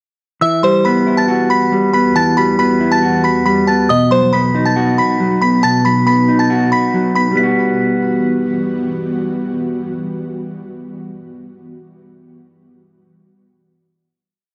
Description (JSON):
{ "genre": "hip hop, drill", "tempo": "138 BPM", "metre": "4/4", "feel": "half-time", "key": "E harmonic minor", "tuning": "A4 = 440 Hz", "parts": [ { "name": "delicate synth tine bell", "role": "melody", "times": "0.4-8.6 s", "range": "C5 to B6", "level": "-18 LUFS", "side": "equal", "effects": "chorus, cassette tape, tape echo" }, { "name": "mellow electric guitar", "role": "accompaniment", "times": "0.4-11.6 s", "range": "B2 to F#4", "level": "-17 LUFS", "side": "equal", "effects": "none" }, { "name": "ethereal airy pad", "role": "sustained chords", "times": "1.1-11.5 s", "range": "E2 to F#4", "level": "-25 LUFS", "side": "equal", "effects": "ensemble chorus, built-in reverb, tremolo" } ], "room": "moderate studio reverb, RT60 0.6 s", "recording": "home recording on cassette", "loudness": "-14 LUFS", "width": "mono", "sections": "0.4-7.4 breakdown; 7.4-10.8 final chord", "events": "none", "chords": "0.4 Emadd9; 3.9 B; 7.4 Emadd9" }